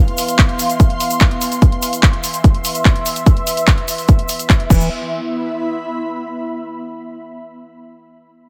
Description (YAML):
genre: psychedelic trance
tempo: 146 BPM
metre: 4/4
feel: straight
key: unclear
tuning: A4 = 440 Hz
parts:
  - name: overtone-sweeping drone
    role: sustained chords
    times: 0.1-4.7 s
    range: E3 to B3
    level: -30 LUFS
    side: equal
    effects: chorus, built-in reverb, sidechain pumping
  - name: ethereal airy pad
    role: texture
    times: 0.0-6.5 s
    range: E5 to C6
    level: -25 LUFS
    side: equal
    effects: ensemble chorus, built-in reverb, phaser, sidechain pumping
  - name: techno drum kit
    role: drums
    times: 0.1-4.8 s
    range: crash cymbal, handclaps, hi-hat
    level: -23 LUFS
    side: equal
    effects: none
  - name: egg shaker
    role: percussion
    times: 0.2-4.9 s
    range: none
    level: -28 LUFS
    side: equal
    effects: none
  - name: electronic kick drum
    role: drums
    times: 0.4-4.8 s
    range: none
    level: -13 LUFS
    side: equal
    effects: none
  - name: liquid acid bass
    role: riff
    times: 4.7-4.9 s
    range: E3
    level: -26 LUFS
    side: equal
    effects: phaser, sidechain pumping, tape echo
  - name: tight sequencer bass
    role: bass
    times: 4.7-4.9 s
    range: E1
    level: -22 LUFS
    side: equal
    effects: none
room: light reverb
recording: none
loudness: -15 LUFS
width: mono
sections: 0.0-4.9 A section; 4.9-6.6 B section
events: none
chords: 0.0 F5; 4.7 E5